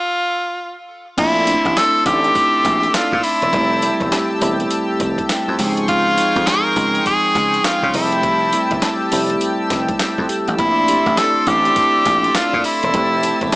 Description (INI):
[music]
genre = R&B, new jack swing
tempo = 102 BPM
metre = 4/4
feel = swing 63% on 16ths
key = unclear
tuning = A4 = 440 Hz
[part]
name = edgy tenor saxophone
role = melody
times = 0.0-13.6 s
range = E4 to Bb4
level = -17 LUFS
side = equal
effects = none
[part]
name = mellow tine electric piano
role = accompaniment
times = 1.2-13.6 s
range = F3 to A4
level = -22 LUFS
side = right 1 dB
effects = none
[part]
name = chorused pulse-width pad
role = sustained chords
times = 1.2-13.6 s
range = G4 to E6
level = -23 LUFS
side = left 1 dB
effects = none
[part]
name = dry thumbed slap bass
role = bass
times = 1.2-13.5 s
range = E1 to Db3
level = -22 LUFS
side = equal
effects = none
[part]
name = dusty soul sampler-style drum kit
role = drums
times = 1.2-13.6 s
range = crash cymbal, handclaps, hi-hat, kick drum, snare drum, tambourine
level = -23 LUFS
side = equal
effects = overdrive
[sound]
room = light reverb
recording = small speaker sound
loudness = -14 LUFS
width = side -22 dB against mid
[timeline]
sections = 0.0-1.2 A section; 1.2-13.6 B section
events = stop 0.0-1.2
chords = 0.0 N.C.; 1.2 Bbmaj9#11; 3.5 Fmaj9; 5.6 Dbmaj7; 7.9 Fmaj9; 10.6 Bbmaj9#11; 12.9 Fmaj9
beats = 0.00 0.59 | 1.18 1.76 2.35 2.94 | 3.53 4.12 4.71 5.29 | 5.88 6.47 7.06 7.65 | 8.23 8.82 9.41 10.00 | 10.59 11.18 11.76 12.35 | 12.94 13.53